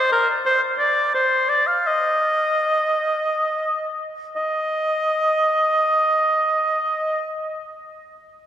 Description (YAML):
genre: classical, baroque-style fantasia for unaccompanied oboe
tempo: free time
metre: none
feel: none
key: unclear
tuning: A4 = 440 Hz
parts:
  - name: clear oboe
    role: solo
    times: 0.0-7.3 s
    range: Bb4 to F5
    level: -18 LUFS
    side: equal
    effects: none
room: wet cathedral reverb, RT60 4.3 s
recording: heard from further back in the room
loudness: -18 LUFS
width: side -10 dB against mid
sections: 0.0-4.4 A section; 4.4-8.5 B section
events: slowing down 0.0-4.4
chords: none